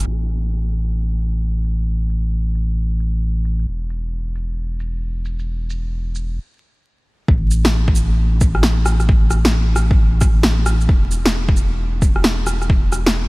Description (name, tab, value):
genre	future garage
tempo	133 BPM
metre	4/4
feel	swing 64% on 16ths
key	unclear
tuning	A4 = 440 Hz
part	warm sub bass	bass	0.0-13.3 s	E1 to A1	-18 LUFS	equal	none
part	electronic shaker, snare drum and rim click	drums	0.3-13.1 s	none	-21 LUFS	equal	none
part	electronic kick drum	drums	7.3-12.8 s	none	-15 LUFS	equal	none
room	little or no reverb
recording	vinyl crackle, low-pass filter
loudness	-16 LUFS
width	side -23 dB against mid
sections	0.1-7.3 A section; 7.3-13.3 B section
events	filter sweep 0.1-7.3; stop 6.4-7.3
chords	none